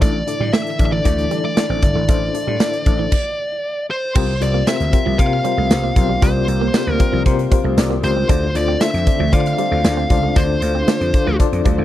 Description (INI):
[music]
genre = 1980s-style pop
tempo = 116 BPM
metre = 4/4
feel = straight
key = unclear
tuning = A4 = 440 Hz
[part]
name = fuzz lead guitar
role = melody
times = 0.0-11.4 s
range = C5 to F5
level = -22 LUFS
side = equal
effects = distortion, tape echo
[part]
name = FM electric piano with tremolo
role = accompaniment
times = 0.0-11.8 s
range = A2 to F5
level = -22 LUFS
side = left 8 dB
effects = none
[part]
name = phased analog pad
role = sustained chords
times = 0.0-11.8 s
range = C3 to F4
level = -28 LUFS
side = right 2 dB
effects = phaser, chorus
[part]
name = direct-recorded clean electric guitar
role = riff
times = 0.0-11.8 s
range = E3 to D4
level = -28 LUFS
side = right 12 dB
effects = lush chorus, tape echo
[part]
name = vintage slap bass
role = bass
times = 0.0-11.8 s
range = G1 to D3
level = -20 LUFS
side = equal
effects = none
[part]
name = big rock drum kit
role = drums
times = 0.0-11.8 s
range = crash cymbal, hi-hat, kick drum, snare drum, tambourine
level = -17 LUFS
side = equal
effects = none
[sound]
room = studio reverb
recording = dry, close 1970s-style studio recording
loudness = -15 LUFS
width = side -13 dB against mid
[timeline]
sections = 0.0-4.2 A section; 4.2-11.8 B section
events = stop 3.1-4.2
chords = 0.0 Asus4; 4.2 C7sus4; 8.3 Dm7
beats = | 0.02 0.54 1.05 1.57 | 2.09 2.60 3.12 3.64 | 4.16 4.67 5.19 5.71 | 6.22 6.74 7.26 7.78 | 8.29 8.81 9.33 9.85 | 10.36 10.88 11.40